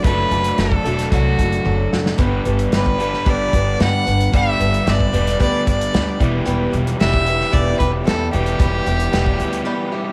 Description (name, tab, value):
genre	folk rock and heartland rock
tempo	112 BPM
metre	4/4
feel	straight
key	unclear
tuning	A4 = 440 Hz
part	picked swing-style acoustic guitar	accompaniment	0.0-10.1 s	G2 to B4	-27 LUFS	equal	none
part	crunchy overdriven guitar	riff	0.0-10.1 s	E2 to A4	-26 LUFS	equal	none
part	upright bass	bass	0.0-9.6 s	E1 to G2	-23 LUFS	equal	none
part	natural country drum kit	drums	0.0-9.7 s	hi-hat, kick drum, snare drum, toms	-23 LUFS	equal	none
part	clear fiddle	melody	0.1-10.1 s	F#4 to F#5	-24 LUFS	equal	cassette tape, tape echo
room	small room ambience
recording	home recording on cassette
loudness	-18 LUFS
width	mono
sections	0.0-10.1 A section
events	drum fill 1.7-2.2; break 9.7-10.1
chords	0.0 D/F#; 2.2 Em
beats	| 0.05 0.59 1.12 1.66 | 2.20 2.73 3.27 3.80 | 4.33 4.87 5.40 5.94 | 6.47 7.00 7.53 8.07 | 8.60 9.13 9.66